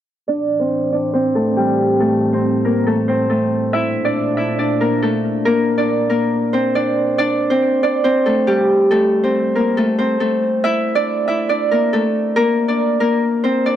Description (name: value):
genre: hip hop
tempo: 139 BPM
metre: 4/4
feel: half-time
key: A phrygian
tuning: A4 = 440 Hz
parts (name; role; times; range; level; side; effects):
- Celtic harp; melody; 0.3-13.8 s; G3 to E5; -15 LUFS; equal; low-pass filter
- warbly tape-like pad; sustained chords; 0.3-7.1 s; A2 to D4; -23 LUFS; right 2 dB; chorus, built-in reverb, low-pass filter
room: light reverb, studio ambience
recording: dry, gritty hardware recording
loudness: -15 LUFS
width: side -10 dB against mid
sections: 0.3-7.2 A section; 7.2-13.8 B section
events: filter sweep 0.3-7.2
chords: 0.3 Am; 3.7 Bbmaj7; 7.2 Am; 10.6 Bbmaj7